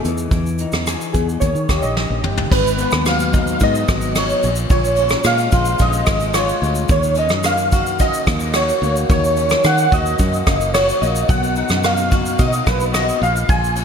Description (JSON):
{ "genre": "indie pop, bedroom pop", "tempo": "109 BPM", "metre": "4/4", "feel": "straight", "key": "G# dorian", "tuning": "A4 = 443 Hz", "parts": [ { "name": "soft electric-piano-like synth keys", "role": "melody", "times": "0.0-13.8 s", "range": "G#4 to G#5", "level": "-19 LUFS", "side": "right 1 dB", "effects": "ensemble chorus, ping-pong delay" }, { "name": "electric guitar through a small old amp", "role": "accompaniment", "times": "0.0-13.8 s", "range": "G#2 to G#4", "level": "-23 LUFS", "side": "left 5 dB", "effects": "lush chorus, warbly pitch drift" }, { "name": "fingered electric bass", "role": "bass", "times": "0.0-13.8 s", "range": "F#1 to D#3", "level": "-21 LUFS", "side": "equal", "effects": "none" }, { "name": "soft brush drum kit", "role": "drums", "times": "0.0-13.8 s", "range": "crash cymbal, hi-hat, kick drum, ride cymbal, rim click, shaker, snare drum, toms", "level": "-19 LUFS", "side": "equal", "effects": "gated reverb" } ], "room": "light reverb, studio reverb", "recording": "bright 1980s-style digital production", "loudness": "-14 LUFS", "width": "side -7 dB against mid", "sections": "0.0-2.5 A section; 2.5-13.8 B section", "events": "drum fill 2.0-2.5", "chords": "0.0 Emaj7; 1.4 D#7; 2.5 G#m7; 4.4 A#m7; 6.9 D#m7; 11.3 Bmaj7; 13.2 A#m7", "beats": "| 0.32 0.87 1.42 1.96 | 2.51 3.06 3.61 4.16 | 4.71 5.26 5.80 6.35 | 6.90 7.45 8.00 8.55 | 9.10 9.64 10.19 10.74 | 11.29 11.84 12.39 12.93 | 13.48" }